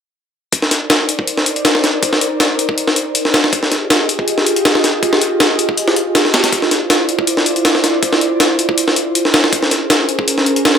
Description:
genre	drum and bass, jungle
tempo	160 BPM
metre	4/4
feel	straight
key	unclear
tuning	A4 = 442 Hz
part	airy breathy pad	sustained chords	0.5-10.8 s	Db4 to Eb5	-17 LUFS	equal	chorus, vintage 12-bit sampler grit
part	breakbeat sampler-style drum kit	drums	0.5-10.8 s	hi-hat, kick drum, snare drum	-13 LUFS	equal	high-pass filter on hats, high-pass filter on kick, high-pass filter on snare
room	wet echo chamber reverb, RT60 1.7 s, digital ambience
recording	none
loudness	-12 LUFS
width	side -7 dB against mid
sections	0.5-10.8 A section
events	none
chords	0.5 Cm9; 3.5 Fm9; 6.5 Dm9; 9.5 Bbm9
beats	| 0.53 0.90 1.28 1.65 | 2.03 2.40 2.78 3.15 | 3.53 3.90 4.28 4.65 | 5.03 5.40 5.78 6.15 | 6.53 6.90 7.28 7.65 | 8.03 8.40 8.78 9.15 | 9.53 9.90 10.28 10.65

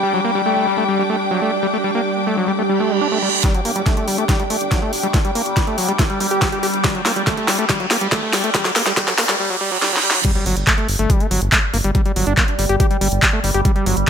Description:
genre	psychedelic trance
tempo	141 BPM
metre	4/4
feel	straight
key	unclear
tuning	A4 = 438 Hz
part	overtone-sweeping drone	sustained chords	0.0-14.1 s	G3	-24 LUFS	equal	chorus, built-in reverb, phaser, sidechain pumping
part	overdriven acid bass	riff	0.0-14.1 s	F#3 to G4	-22 LUFS	moving between left 3 dB and right 3 dB	auto-pan, sidechain pumping, tape echo
part	rich studio string section	texture	0.0-9.4 s	D4 to D6	-24 LUFS	equal	sidechain pumping
part	reverse cymbal, riser and impact	sound effects	2.8-11.9 s	none	-24 LUFS	right 3 dB	none
part	drum and bass drum kit	drums	3.4-14.1 s	crash cymbal, handclaps, hi-hat, snare drum	-20 LUFS	equal	overdrive
part	electronic kick drum	drums	3.4-14.1 s	none	-18 LUFS	equal	overdrive
part	round analog bass	bass	3.7-14.0 s	G1	-23 LUFS	equal	high-pass filter
room	light reverb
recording	high-pass filter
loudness	-15 LUFS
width	side -8 dB against mid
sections	0.0-3.4 A section; 3.4-10.2 B section; 10.2-14.1 C section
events	filter sweep on acid bass 0.0-3.4, 3.4-10.2; reverse cymbal 2.8-3.4, 9.4-10.2; build-up 3.4-10.2; drum fill 3.4-9.4, 9.8-10.2; riser 3.4-10.2; filter sweep 3.4-10.2; drop 10.2-14.1; impact 10.2-11.9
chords	0.0 G5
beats	| 0.03 0.46 0.89 1.31 | 1.74 2.16 2.59 3.01 | 3.44 3.86 4.29 4.71 | 5.14 5.57 5.99 6.42 | 6.84 7.27 7.69 8.12 | 8.54 8.97 9.40 9.82 | 10.25 10.67 11.10 11.52 | 11.95 12.37 12.80 13.22 | 13.65 14.08

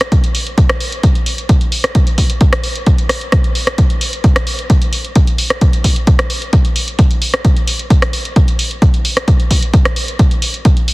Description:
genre	techno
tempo	131 BPM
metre	4/4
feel	straight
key	none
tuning	none
part	punchy analog drum machine	drums	0.0-10.9 s	hi-hat, rim click	-18 LUFS	equal	sidechain pumping on hats
part	electronic kick drum	drums	0.1-10.7 s	none	-11 LUFS	equal	none
room	little or no reverb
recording	heavily compressed radio sound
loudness	-11 LUFS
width	side -22 dB against mid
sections	0.0-10.9 A section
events	none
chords	none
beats	| 0.12 0.58 1.03 1.49 | 1.95 2.41 2.87 3.32 | 3.78 4.24 4.70 5.16 | 5.61 6.07 6.53 6.99 | 7.45 7.90 8.36 8.82 | 9.28 9.74 10.19 10.65

